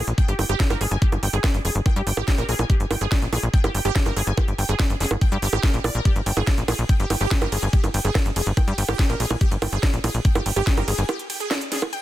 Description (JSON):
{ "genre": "psychedelic trance", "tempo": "143 BPM", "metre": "4/4", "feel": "straight", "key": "G phrygian", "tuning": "A4 = 439 Hz", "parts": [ { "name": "wide unison pluck", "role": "riff", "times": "0.0-12.0 s", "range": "G4 to Ab5", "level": "-28 LUFS", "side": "right 2 dB", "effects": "auto-pan, sidechain pumping, digital delay" }, { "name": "tight sequencer bass", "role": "bass", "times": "0.0-11.0 s", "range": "F1 to G2", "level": "-23 LUFS", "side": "equal", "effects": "tube saturation" }, { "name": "drum and bass drum kit", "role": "drums", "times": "0.1-12.0 s", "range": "bongos, hi-hat, ride cymbal, snare drum", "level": "-26 LUFS", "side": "right 2 dB", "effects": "none" }, { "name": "electronic kick drum", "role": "drums", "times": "0.2-10.8 s", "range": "none", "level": "-20 LUFS", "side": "equal", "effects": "none" } ], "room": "little or no reverb", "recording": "dense, heavily limited modern master", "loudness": "-19 LUFS", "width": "side -14 dB against mid", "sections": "0.0-12.0 A section", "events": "break 11.1-12.0", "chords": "0.0 G5", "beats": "0.18 0.60 | 1.02 1.44 1.86 2.28 | 2.70 3.12 3.54 3.96 | 4.38 4.79 5.21 5.63 | 6.05 6.47 6.89 7.31 | 7.73 8.15 8.57 8.99 | 9.41 9.83 10.25 10.67 | 11.09 11.51 11.93" }